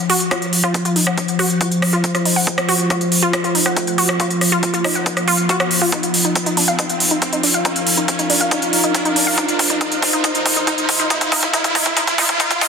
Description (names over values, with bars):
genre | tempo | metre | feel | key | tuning
psychedelic trance | 139 BPM | 4/4 | straight | unclear | A4 = 440 Hz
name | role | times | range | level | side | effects
overtone-sweeping drone | sustained chords | 0.0-12.7 s | F3 to F4 | -21 LUFS | left 1 dB | chorus, built-in reverb, sidechain pumping
riser | sound effects | 0.0-12.7 s | none | -23 LUFS | right 2 dB | none
deep dark ambient pad | texture | 0.5-12.7 s | Eb4 to F5 | -27 LUFS | left 1 dB | chorus, built-in reverb, sidechain pumping
wide unison pluck | riff | 0.1-12.7 s | D4 to Gb5 | -21 LUFS | equal | auto-pan, sidechain pumping, ping-pong delay
big-room dance drum kit | drums | 0.1-12.7 s | hi-hat, rim click | -18 LUFS | equal | soft clipping on snare, high-pass filter on snare, high-pass filter on hats, high-pass filter on room
electronic kick drum | drums | 0.3-12.7 s | none | -19 LUFS | equal | overdrive, high-pass filter on kick
room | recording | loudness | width
moderate lush hall reverb, RT60 1.6 s, digital ambience | dense, heavily limited modern master, high-pass filter | -14 LUFS | side -6 dB against mid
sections
0.0-12.7 A section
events
build-up 0.0-12.7; riser 0.0-12.7; filter sweep on synth arpeggio sound 0.0-12.7; filter sweep on synth drone 0.0-12.7; drum fill 5.9-12.7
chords
0.0 F5; 5.9 Eb5